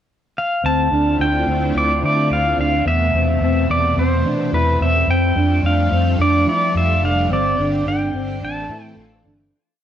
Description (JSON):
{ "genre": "dream pop", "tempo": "108 BPM", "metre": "4/4", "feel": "straight", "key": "A minor", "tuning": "A4 = 439 Hz", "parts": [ { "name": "pedal steel guitar", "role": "melody", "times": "0.4-8.9 s", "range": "B4 to A5", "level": "-20 LUFS", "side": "equal", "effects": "tape echo" }, { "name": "string machine, violins", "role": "sustained chords", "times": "0.6-9.5 s", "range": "B2 to F4", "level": "-25 LUFS", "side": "equal", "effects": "ensemble chorus" }, { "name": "mellow electric guitar", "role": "arpeggios", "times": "0.6-9.5 s", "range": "B3 to F4", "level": "-22 LUFS", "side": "equal", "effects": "analog chorus, tape echo" }, { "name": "vintage muted fingered electric bass", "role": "bass", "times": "0.6-9.5 s", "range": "F1 to F3", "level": "-20 LUFS", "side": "equal", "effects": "none" } ], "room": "moderate echo chamber reverb, RT60 1.6 s", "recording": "worn, warbling old tape, cassette tape, warbly pitch drift", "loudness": "-15 LUFS", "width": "side -10 dB against mid", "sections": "0.0-0.6 pickup bar; 0.6-9.5 climax", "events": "fade-out 7.3-9.5", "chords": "0.0 N.C.; 0.6 Dm7; 2.9 Amadd9/E; 5.1 Fadd9; 7.3 Gsus4; 8.4 Am", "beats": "0.08 | 0.64 1.20 1.75 2.31 | 2.86 3.42 3.97 4.53 | 5.08 5.64 6.20 6.75 | 7.31 7.86 8.42 8.97" }